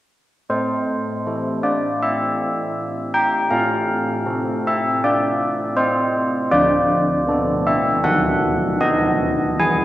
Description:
classical, tune for church bells; 80 BPM; 4/4; straight; A minor; A4 = 440 Hz
old church bells; solo; 0.5-9.8 s; D3 to G#5; -17 LUFS; equal
moderate scoring stage reverb, RT60 1.5 s; dark, warm production; -17 LUFS; side -14 dB against mid
0.5-9.8 A section
0.5 Am; 3.5 F/A; 6.5 Bm7/D; 8.0 B7/D#

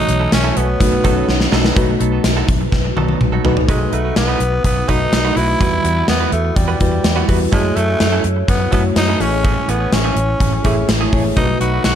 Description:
1980s-style pop; 125 BPM; 4/4; straight; B mixolydian; A4 = 440 Hz
raspy tenor saxophone; melody; 0.0-12.0 s; G3 to F#4; -20 LUFS; equal; ping-pong delay
FM electric piano with soft pad layer; accompaniment; 0.0-12.0 s; A2 to E5; -21 LUFS; left 1 dB; chorus
direct-recorded clean electric guitar; riff; 0.1-11.9 s; E3 to B4; -26 LUFS; right 8 dB; lush chorus
vintage muted fingered electric bass; bass; 0.1-12.0 s; A1 to F#2; -19 LUFS; equal
gated 80s drum kit; drums; 0.1-12.0 s; hi-hat, kick drum, snare drum, tambourine, toms; -17 LUFS; equal
light reverb, studio ambience; dark, warm production; -13 LUFS; side -9 dB against mid
0.0-1.8 A section; 1.8-3.7 B section; 3.7-12.0 C section
drum fill 1.3-1.8, 2.7-3.7
0.0 F#m7/B; 0.8 B7; 5.6 Emadd9; 7.5 F#m7; 9.2 Amaj7; 11.4 B7

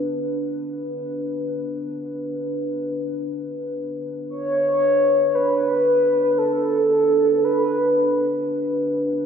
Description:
ambient; free time; B minor; A4 = 438 Hz
dark analog pad; sustained chords; 0.0-9.3 s; D4 to B4; -25 LUFS; equal; wide subtle chorus
mellow horn-like synth lead; melody; 4.3-8.2 s; A4 to C#5; -18 LUFS; right 1 dB; chorus, analog delay
wet lush hall reverb, RT60 2.7 s; dreamy mix soaked in reverb; -19 LUFS; side -7 dB against mid
0.0-9.3 A section
0.0 Bm

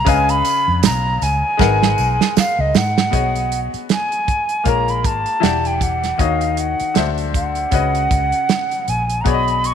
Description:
lush 1970s-style soul; 78 BPM; 4/4; swing 58% on 16ths; A4 = 442 Hz
hollow concert flute; melody; 0.0-9.7 s; D#5 to C#6; -19 LUFS; right 2 dB; slapback echo
bright baby grand piano; accompaniment; 0.0-9.7 s; C#3 to F#5; -22 LUFS; left 14 dB
vintage muted fingered electric bass; bass; 0.0-9.7 s; E1 to G#2; -21 LUFS; equal
warm soul drum kit; drums; 0.1-9.7 s; hi-hat, kick drum, snare drum; -19 LUFS; right 5 dB
tambourine; percussion; 0.1-3.0 s; -33 LUFS; right 16 dB
light reverb, small room reverb; 1960s-style stereo with parts hard left and right; -15 LUFS; side -8 dB against mid
0.0-3.1 A section; 3.1-9.7 B section
drum fill 1.6-3.1
0.1 C#7; 1.6 G#m7; 3.1 B69; 4.7 A#m7; 5.4 Em9; 6.2 D#m9; 7.0 D9; 7.7 C#9sus4

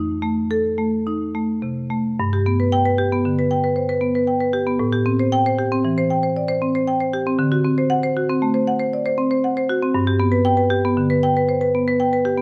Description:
classical, contemporary piece for solo marimba; 116 BPM; 5/4; rubato; G major; A4 = 440 Hz
marimba with medium hard mallets; solo; 0.0-12.4 s; F2 to G5; -20 LUFS; equal
light reverb; close, detailed microphones; -20 LUFS; mono
0.0-2.2 A section; 2.2-12.4 B section
0.0 F7; 2.2 G; 4.8 Am7; 7.4 D7; 10.0 G

